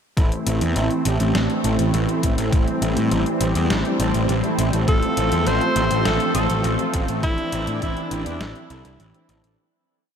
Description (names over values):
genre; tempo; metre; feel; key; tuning
synthwave; 102 BPM; 4/4; straight; A minor; A4 = 439 Hz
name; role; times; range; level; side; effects
analog string pad; sustained chords; 0.2-9.6 s; E3 to D4; -24 LUFS; equal; ensemble chorus, sidechain pumping
analog synth brass; stabs; 0.2-9.6 s; A3 to A4; -28 LUFS; right 2 dB; chorus, analog delay
fuzz picked electric bass; bass; 0.2-9.6 s; A1 to A2; -23 LUFS; equal; overdrive, sidechain pumping
detuned 8-bit digital drum machine; drums; 0.2-9.6 s; hi-hat, snare drum; -29 LUFS; left 1 dB; overdrive
electronic kick drum; drums; 0.2-7.9 s; none; -20 LUFS; equal; overdrive
breathy tenor saxophone; melody; 4.9-9.3 s; D4 to C5; -24 LUFS; right 1 dB; diffuse ambient delay
soft synth bell; second line; 4.9-9.3 s; D4 to C5; -33 LUFS; left 4 dB; none
room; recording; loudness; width
moderate huge ambient reverb, RT60 8.8 s; dreamy mix soaked in reverb; -18 LUFS; side -8 dB against mid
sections
0.2-9.6 verse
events
fade-out 6.4-9.6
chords
0.2 Am; 4.9 F/A; 7.2 Cadd9/A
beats
| 0.17 0.76 1.35 1.94 | 2.53 3.11 3.70 4.29 | 4.88 5.47 6.05 6.64 | 7.23 7.82 8.41 9.00